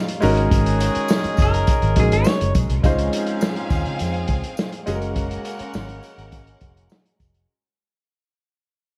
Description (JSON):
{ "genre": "lush 1970s-style soul", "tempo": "103 BPM", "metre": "4/4", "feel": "straight", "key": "Db major", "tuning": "A4 = 440 Hz", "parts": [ { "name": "clear studio violin section", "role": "second line", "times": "0.0-7.5 s", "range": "C4 to Gb5", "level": "-36 LUFS", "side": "equal", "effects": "none" }, { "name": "warm concert grand piano", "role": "accompaniment", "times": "0.0-7.5 s", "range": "G3 to C5", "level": "-27 LUFS", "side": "equal", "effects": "none" }, { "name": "vintage drum kit", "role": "drums", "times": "0.1-7.5 s", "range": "hi-hat, kick drum, snare drum", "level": "-24 LUFS", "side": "equal", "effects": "none" }, { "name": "warm horn section", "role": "stabs", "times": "0.2-7.2 s", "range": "Ab2 to Ab4", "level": "-31 LUFS", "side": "equal", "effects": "none" }, { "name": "vintage muted fingered electric bass", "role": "bass", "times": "0.2-7.4 s", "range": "F1 to Db3", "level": "-24 LUFS", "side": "equal", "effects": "none" }, { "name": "tambourine", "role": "percussion", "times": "0.2-7.3 s", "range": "none", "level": "-45 LUFS", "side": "equal", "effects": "none" }, { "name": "electric guitar through a small old amp", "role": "melody", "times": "1.4-2.5 s", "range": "Ab4 to Db5", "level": "-28 LUFS", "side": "equal", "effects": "tape echo" } ], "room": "light reverb, studio reverb", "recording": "dark, warm production", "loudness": "-20 LUFS", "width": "mono", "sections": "0.0-2.8 A section; 2.8-7.5 B section", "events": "fade-out 2.8-7.5", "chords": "0.2 Ab7sus4; 2.8 Dbmaj9; 4.9 Gbmaj9" }